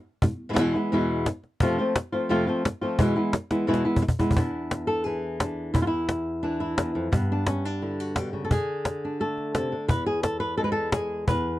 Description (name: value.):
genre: flamenco.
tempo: 174 BPM.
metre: 4/4.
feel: straight.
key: E phrygian dominant.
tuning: A4 = 440 Hz.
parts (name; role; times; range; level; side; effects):
flamenco guitar; melody; 0.2-11.6 s; E2 to B4; -25 LUFS; equal; none.
cajon; percussion; 0.2-11.4 s; none; -25 LUFS; equal; none.
room: little or no reverb.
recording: dry, close 1970s-style studio recording.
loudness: -24 LUFS.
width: side -15 dB against mid.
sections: 0.0-4.4 A section; 4.4-11.6 B section.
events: drum fill 3.5-4.4.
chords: 0.0 E; 1.6 F; 3.0 E; 4.4 E7; 7.1 G; 8.5 D5; 9.9 E.